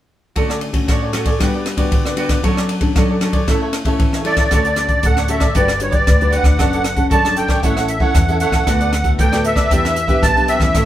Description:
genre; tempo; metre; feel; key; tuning
samba and choro; 116 BPM; 4/4; straight; D major; A4 = 440 Hz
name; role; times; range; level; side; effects
cavaquinho; accompaniment; 0.4-10.9 s; D4 to E5; -23 LUFS; right 2 dB; none
nylon-string guitar; accompaniment; 0.4-10.9 s; A2 to B4; -21 LUFS; left 2 dB; none
compact cocktail drum kit; drums; 0.4-10.9 s; hi-hat, kick drum, ride cymbal, rim click; -17 LUFS; equal; none
musette accordion; melody; 4.3-10.9 s; C#5 to A5; -18 LUFS; right 2 dB; none
upright bass; bass; 4.5-10.9 s; F#1 to E2; -20 LUFS; equal; none
room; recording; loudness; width
moderate studio reverb, RT60 0.7 s; band playing live in one room; -14 LUFS; side -12 dB against mid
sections
0.4-4.5 A section; 4.5-10.9 B section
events
none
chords
0.4 Dmaj7; 1.4 Gmaj7; 2.4 Dmaj7/F#; 3.5 A; 4.5 Dmaj7; 5.6 Gmaj7; 6.6 Dmaj7/F#; 7.6 A; 8.7 D6; 9.7 Em7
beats
| 0.36 0.88 1.40 1.92 | 2.44 2.96 3.48 3.99 | 4.51 5.03 5.55 6.07 | 6.59 7.11 7.63 8.15 | 8.67 9.19 9.70 10.22 | 10.74

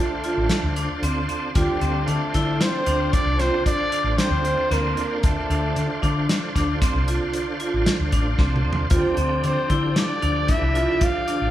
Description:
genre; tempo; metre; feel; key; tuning
progressive instrumental, band music in an uneven meter; 114 BPM; 7/4; straight; D minor; A4 = 440 Hz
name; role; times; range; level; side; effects
breathy trumpet; melody; 0.0-11.5 s; G4 to F5; -26 LUFS; left 1 dB; none
trombone with bucket mute; second line; 0.0-11.5 s; G3 to F4; -30 LUFS; right 2 dB; none
bright tonewheel organ; accompaniment; 0.0-11.5 s; D3 to C5; -28 LUFS; right 2 dB; overdrive, chorus vibrato, fast rotary speaker
vibraphone with hard mallets; arpeggios; 0.2-11.5 s; C4 to F4; -27 LUFS; right 1 dB; none
warm soul drum kit; drums; 0.2-11.4 s; hi-hat, kick drum, snare drum, toms; -24 LUFS; equal; none
woody fretless electric bass; bass; 0.4-11.5 s; A1 to D3; -24 LUFS; left 1 dB; none
room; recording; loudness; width
wet large studio reverb, RT60 1.0 s; band playing live in one room; -19 LUFS; side -13 dB against mid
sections
0.0-11.5 A section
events
drum fill 8.4-8.9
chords
0.0 Dm7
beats
0.50 1.03 | 1.55 2.08 2.61 3.13 3.66 4.18 4.71 | 5.24 5.76 6.29 6.81 7.34 7.86 8.39 | 8.91 9.44 9.96 10.49 11.02

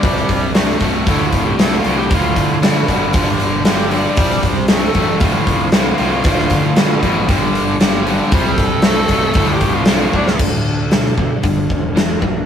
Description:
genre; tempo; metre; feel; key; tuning
classic rock; 116 BPM; 4/4; straight; D minor; A4 = 440 Hz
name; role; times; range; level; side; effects
clear tenor saxophone; melody; 0.0-10.4 s; D4 to D5; -22 LUFS; equal; none
string machine, full ensemble; sustained chords; 0.0-10.4 s; F3 to G4; -31 LUFS; equal; none
distorted electric guitar; riff; 0.0-12.5 s; D2 to A3; -22 LUFS; right 6 dB; overdrive
overdriven electric guitar; riff; 0.0-12.5 s; D2 to A3; -20 LUFS; left 5 dB; none
fuzz fingered electric bass; bass; 0.0-12.5 s; E1 to D3; -22 LUFS; right 1 dB; overdrive
huge arena drum kit; drums; 0.0-12.3 s; crash cymbal, hi-hat, kick drum, snare drum; -15 LUFS; equal; none
overdriven reed electric piano; accompaniment; 0.1-10.3 s; D4 to D5; -31 LUFS; right 6 dB; none
electric slide guitar; second line; 10.4-12.5 s; D4 to A4; -26 LUFS; left 6 dB; none
room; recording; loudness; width
light reverb; rough rehearsal-room recording; -12 LUFS; side -8 dB against mid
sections
0.0-10.4 A section; 10.4-12.5 B section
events
tenor saxophone solo 0.0-10.4; drum fill 10.1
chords
0.0 Csus2; 1.1 Dm; 3.2 Gm; 4.2 Csus2; 5.2 Dm; 7.3 Gm; 8.3 Csus2; 9.4 Dm; 10.4 D5; 11.4 Gm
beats
| 0.05 0.56 1.08 1.60 | 2.12 2.63 3.15 3.67 | 4.19 4.70 5.22 5.74 | 6.26 6.77 7.29 7.81 | 8.33 8.84 9.36 9.88 | 10.40 10.92 11.44 11.96

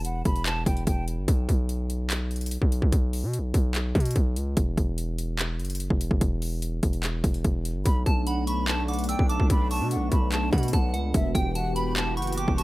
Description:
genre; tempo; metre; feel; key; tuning
hip hop, trap; 146 BPM; 4/4; half-time; B minor; A4 = 438 Hz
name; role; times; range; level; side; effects
breathy mellow silver concert flute; melody; 0.0-1.0, 7.9-12.6 s; E5 to B5; -33 LUFS; right 1 dB; analog delay
distorted 808-style bass; bass; 0.0-12.6 s; E1 to B2; -27 LUFS; equal; distortion
trap drum kit; drums; 0.0-12.6 s; handclaps, hi-hat, kick drum; -26 LUFS; equal; overdrive
sweeping resonant pad; sustained chords; 7.9-12.6 s; E3 to G4; -31 LUFS; equal; chorus
soft synth bell; second line; 8.1-12.6 s; F#5 to E6; -35 LUFS; right 3 dB; chorus, phaser, analog delay
room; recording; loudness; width
little or no reverb; echo-heavy mix; -23 LUFS; side -19 dB against mid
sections
0.0-12.6 A section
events
none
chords
0.0 Em; 1.3 N.C.; 7.9 Bm7; 11.1 Emadd9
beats
0.05 0.46 0.87 | 1.28 1.69 2.10 2.51 | 2.92 3.33 3.75 4.16 | 4.57 4.98 5.39 5.80 | 6.21 6.62 7.03 7.45 | 7.86 8.27 8.68 9.09 | 9.50 9.91 10.32 10.73 | 11.14 11.55 11.96 12.38

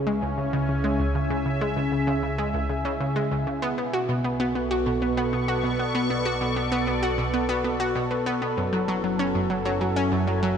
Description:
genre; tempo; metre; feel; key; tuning
ambient, sequencer-driven space music; 97 BPM; 4/4; straight; unclear; A4 = 442 Hz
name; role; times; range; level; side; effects
sweeping resonant pad; sustained chords; 0.0-10.6 s; B2 to C#6; -27 LUFS; equal; chorus
concert harp; arpeggios; 0.0-10.6 s; E4 to E5; -37 LUFS; moving between left 5 dB and right 1 dB; none
analog pluck; riff; 0.0-10.5 s; C#2 to F#4; -26 LUFS; equal; chorus, tape echo
fat analog bass; bass; 0.0-10.6 s; F#1 to C#2; -32 LUFS; equal; none
room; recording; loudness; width
moderate plate reverb, RT60 3.4 s; cassette tape; -23 LUFS; side -7 dB against mid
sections
0.0-10.6 A section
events
none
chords
0.0 C#m; 3.6 Bm7; 8.6 F#m7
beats
0.53 | 1.15 1.77 2.39 3.01 | 3.63 4.25 4.86 5.48 | 6.10 6.72 7.34 7.96 | 8.57 9.19 9.81 10.43

